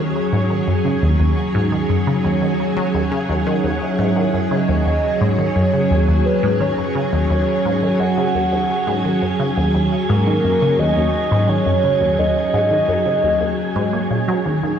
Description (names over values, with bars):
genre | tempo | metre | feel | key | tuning
ambient, sequencer-driven space music | 86 BPM | 4/4 | straight | Eb minor | A4 = 439 Hz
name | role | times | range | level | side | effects
string machine, full ensemble | sustained chords | 0.0-14.8 s | Gb3 to Db5 | -20 LUFS | right 1 dB | ensemble chorus
resonant blip pluck | riff | 0.0-14.8 s | Eb2 to Bb3 | -20 LUFS | equal | phaser, tape echo
wind-like tuned noise texture | texture | 0.0-14.8 s | Ab5 | -30 LUFS | right 4 dB | built-in reverb
soft octave-layered synth lead | melody | 3.8-14.3 s | Bb4 to Gb5 | -20 LUFS | equal | chorus, phaser, tape echo
room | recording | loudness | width
wet concert hall reverb, RT60 1.8 s, digital ambience | dark, warm production | -15 LUFS | side -8 dB against mid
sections
0.0-14.8 A section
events
fade-in on synth texture 0.0-14.8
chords
0.0 Ebm7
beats
0.33 | 1.02 1.72 2.42 3.12 | 3.82 4.51 5.21 5.91 | 6.61 7.30 8.00 8.70 | 9.40 10.10 10.79 11.49 | 12.19 12.89 13.58 14.28